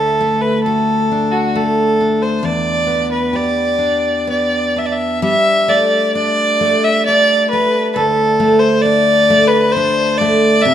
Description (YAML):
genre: celtic folk, Celtic slow air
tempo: 66 BPM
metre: 3/4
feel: uneven beats, rubato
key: unclear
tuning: A4 = 439 Hz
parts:
  - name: rich fiddle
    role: melody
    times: 0.0-10.7 s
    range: F#4 to E5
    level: -14 LUFS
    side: equal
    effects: none
  - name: picked steel-string acoustic guitar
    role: accompaniment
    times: 0.0-10.7 s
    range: D2 to G4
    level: -17 LUFS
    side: left 1 dB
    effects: none
room: light reverb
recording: minimal, uncompressed stereo recording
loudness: -12 LUFS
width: side -10 dB against mid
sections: 0.0-5.2 A section; 5.2-10.7 B section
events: none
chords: 0.0 D; 2.4 Em7; 5.2 Gsus2; 8.0 D5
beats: 0.67 1.56 | 2.44 3.33 4.27 | 5.21 6.14 7.07 | 7.97 8.85 9.75 | 10.65